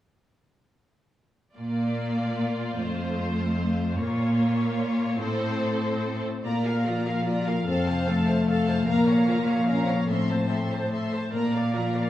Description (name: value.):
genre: cinematic, heroic adventure film score.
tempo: 148 BPM.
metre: 3/4.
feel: straight.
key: unclear.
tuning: A4 = 441 Hz.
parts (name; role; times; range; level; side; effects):
rich studio violin section; melody; 1.6-12.1 s; C5 to C6; -36 LUFS; left 2 dB; none.
rich symphonic violin section; second line; 1.6-12.1 s; F4 to Bb5; -35 LUFS; left 2 dB; none.
dark studio viola section; accompaniment; 1.6-12.1 s; A3 to D5; -30 LUFS; right 1 dB; none.
rich symphonic cello section; bass; 1.6-12.1 s; F2 to Bb2; -28 LUFS; equal; none.
mellow French horn section; sustained chords; 6.4-12.1 s; A3 to F4; -26 LUFS; left 1 dB; none.
concert harp; arpeggios; 6.4-12.1 s; F2 to D5; -30 LUFS; left 3 dB; none.
room: wet scoring stage reverb, RT60 1.9 s.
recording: small room reverb.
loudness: -23 LUFS.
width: side -13 dB against mid.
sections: 1.6-6.4 A section; 6.4-12.1 B section.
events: none.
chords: 1.6 Bb; 2.8 F; 4.0 Bbm; 5.2 Am; 6.4 Bb; 7.7 F; 8.9 Bbm; 10.1 Am; 11.3 Bb.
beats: | 1.57 1.97 2.38 | 2.79 3.19 3.59 | 3.98 4.38 4.79 | 5.20 5.61 6.03 | 6.45 6.86 7.27 | 7.67 8.08 8.48 | 8.88 9.28 9.68 | 10.09 10.50 10.91 | 11.33 11.74.